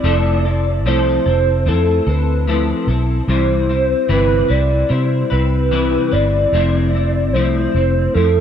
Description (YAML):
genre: indie pop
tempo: 74 BPM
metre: 4/4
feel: straight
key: F lydian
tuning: A4 = 440 Hz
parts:
  - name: warbly nostalgic lead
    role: melody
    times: 0.0-8.4 s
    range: A4 to D5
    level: -19 LUFS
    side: right 1 dB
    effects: lush chorus, slapback echo
  - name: clean electric guitar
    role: accompaniment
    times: 0.0-8.4 s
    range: C3 to B4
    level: -19 LUFS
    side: left 3 dB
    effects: ensemble chorus, vibrato effect
  - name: vintage muted fingered electric bass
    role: bass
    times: 0.0-8.4 s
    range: F1 to C3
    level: -17 LUFS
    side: right 1 dB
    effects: none
room: light reverb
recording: dark, warm production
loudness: -14 LUFS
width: side -8 dB against mid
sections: 0.0-8.4 A section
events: none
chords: 0.0 Fmaj7; 3.3 Cmaj7; 6.5 Fmaj7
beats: | 0.04 0.85 1.67 2.48 | 3.29 4.10 4.91 5.72 | 6.53 7.34 8.15